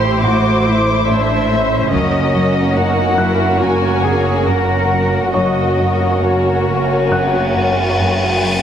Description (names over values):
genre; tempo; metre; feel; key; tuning
cinematic, suspense film score; 70 BPM; 4/4; straight; unclear; A4 = 439 Hz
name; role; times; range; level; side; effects
muted studio violin section; melody; 0.0-8.4 s; C#5 to D6; -21 LUFS; left 3 dB; none
muted studio violin section; second line; 0.0-8.6 s; E4 to C5; -20 LUFS; left 2 dB; none
muted studio viola section; accompaniment; 0.0-8.6 s; A3 to C5; -20 LUFS; right 2 dB; none
muted studio cello section; riff; 0.0-8.6 s; F#2 to A3; -23 LUFS; equal; none
muted studio cello section; bass; 0.0-8.4 s; C#4 to A#4; -20 LUFS; right 1 dB; none
muted studio double bass section; bass; 0.0-8.6 s; F#1 to A1; -20 LUFS; right 2 dB; none
warm concert grand piano; texture; 0.0-8.6 s; C#5 to F#6; -25 LUFS; left 2 dB; none
taiko ensemble; drums; 1.9-3.6 s; none; -27 LUFS; left 2 dB; none
cymbal swell; sound effects; 6.1-8.6 s; none; -21 LUFS; left 1 dB; none
room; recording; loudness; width
moderate scoring stage reverb, RT60 1.6 s; heavily compressed radio sound, multiband compression; -12 LUFS; side -9 dB against mid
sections
0.0-8.6 A section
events
cymbal swell 6.1-8.6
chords
0.0 Am; 1.9 F#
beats
0.24 1.08 | 1.92 2.76 3.61 4.46 | 5.34 6.22 7.11 7.99